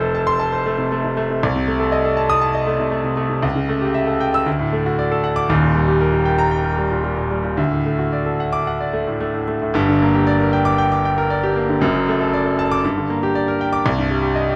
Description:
classical, virtuoso piano study; 117 BPM; 4/4; rubato; G minor; A4 = 438 Hz
bright concert grand piano; solo; 0.0-14.6 s; Eb1 to E6; -19 LUFS; equal
moderate large studio reverb, RT60 1.1 s; dark, warm production; -19 LUFS; mono
0.0-9.7 A section; 9.7-14.6 B section
0.0 F; 1.4 Adim/C; 3.4 A7/C#; 4.5 D; 5.5 Eb; 7.6 D; 9.7 Gm; 11.8 D/F#; 12.8 Gm; 13.8 Cm

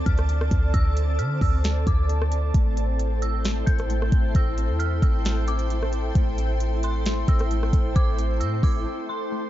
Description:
hip hop, atmospheric cloud-rap; 133 BPM; 4/4; half-time; A minor; A4 = 439 Hz
dark detuned synth bell; melody; 0.0-9.5 s; C6 to G6; -34 LUFS; right 2 dB; chorus, phaser, low-pass filter, tape echo
shimmering ambient pad; sustained chords; 0.0-9.5 s; C4 to A5; -31 LUFS; right 1 dB; chorus, built-in reverb, sidechain pumping
concert harp; arpeggios; 0.0-9.5 s; A3 to E4; -36 LUFS; left 10 dB; low-pass filter, tape echo
clean 808-style bass; bass; 0.0-8.8 s; A1 to D3; -23 LUFS; equal
trap drum kit; drums; 0.1-8.7 s; hi-hat, kick drum, rim click, snare drum; -24 LUFS; equal
drifting glass-harmonics texture; texture; 3.1-9.5 s; A4 to C6; -40 LUFS; right 1 dB; chorus, built-in reverb
little or no reverb; dark, warm production, nothing above 7.6 kHz; -20 LUFS; side -13 dB against mid
0.0-9.5 A section
break 8.9-9.5
0.0 Dmadd9; 2.5 Am7

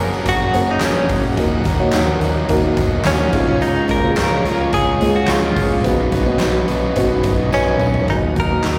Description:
piano-driven pop; 107 BPM; 4/4; straight; A4 = 440 Hz
direct-recorded clean electric guitar; melody; 0.0-8.8 s; C#4 to A#4; -23 LUFS; equal; tremolo
dark upright piano; accompaniment; 0.0-8.8 s; G#2 to C#5; -23 LUFS; equal
pipe organ, cornet; sustained chords; 0.0-8.8 s; G#4 to D#6; -32 LUFS; equal
crunchy overdriven guitar; riff; 0.0-8.6 s; B2 to C#5; -23 LUFS; equal
vintage muted fingered electric bass; bass; 0.0-8.8 s; F#1 to D#2; -26 LUFS; equal
huge arena drum kit; drums; 0.1-8.8 s; crash cymbal, handclaps, hi-hat, kick drum, snare drum, toms; -24 LUFS; equal
tambourine; percussion; 0.5-7.9 s; -46 LUFS; equal
wet church reverb, RT60 2.8 s; rough rehearsal-room recording, tube saturation; -17 LUFS; mono
0.0-8.1 A section
drum fill 7.5-8.1
0.0 F#add9; 1.4 D#m; 3.3 C#; 5.8 Badd9; 8.1 D#m

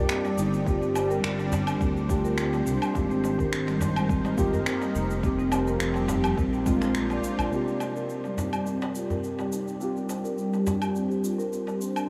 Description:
organic downtempo; 105 BPM; 4/4; swing 54% on 16ths; C minor; A4 = 439 Hz
muted felt-like synth keys; accompaniment; 0.0-12.1 s; C3 to D5; -34 LUFS; equal; chorus, sidechain pumping, diffuse ambient delay
warm analog pad; sustained chords; 0.0-12.1 s; F3 to D5; -35 LUFS; equal; chorus, sidechain pumping
marimba with soft mallets; arpeggios; 0.0-12.0 s; G3 to C5; -32 LUFS; equal; low-pass filter, diffuse ambient delay
smooth synth bass; bass; 0.0-7.5 s; F1 to D2; -32 LUFS; equal; sidechain pumping
electronic finger snaps, shaker and woodblock; drums; 0.1-12.1 s; -37 LUFS; equal; overdrive
darbuka; percussion; 0.2-11.8 s; -39 LUFS; equal
electronic kick drum; drums; 0.7-6.8 s; -31 LUFS; equal; overdrive
bronze singing bowl; texture; 7.5-12.1 s; Bb4; -49 LUFS; equal
wet huge ambient reverb, RT60 8.3 s; dreamy mix soaked in reverb, small room ambience; -27 LUFS; mono
0.0-7.5 A section; 7.5-12.1 B section
kick drops out 7.0-7.5; filter sweep on marimba 7.5-12.1; filter sweep on analog synth pad 7.5-12.1
0.0 Cm7; 0.7 G7sus4; 3.0 Abmaj7; 5.2 F5; 6.4 Bb7; 7.5 Cm7; 9.8 G7sus4

